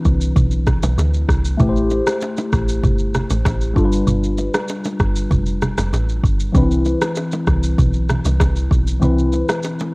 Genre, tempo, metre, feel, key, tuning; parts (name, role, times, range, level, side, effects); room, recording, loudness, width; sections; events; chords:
afrobeats; 97 BPM; 4/4; straight; C major; A4 = 440 Hz
tine electric piano; accompaniment; 0.0-9.9 s; E3 to C5; -21 LUFS; left 1 dB; overdrive, phaser, cassette tape
deep log drum bass; bass; 0.1-9.4 s; F1 to D2; -18 LUFS; equal
afro-pop drum kit; drums; 0.1-9.9 s; kick drum, rim click, shaker; -20 LUFS; equal; cassette tape
congas and bongos; percussion; 0.4-9.9 s; -24 LUFS; right 1 dB
digital ambience; home recording on cassette; -15 LUFS; side -26 dB against mid
0.0-9.9 A section
0.0 Cmaj7; 1.6 Am7; 3.8 G7; 6.5 Cmaj7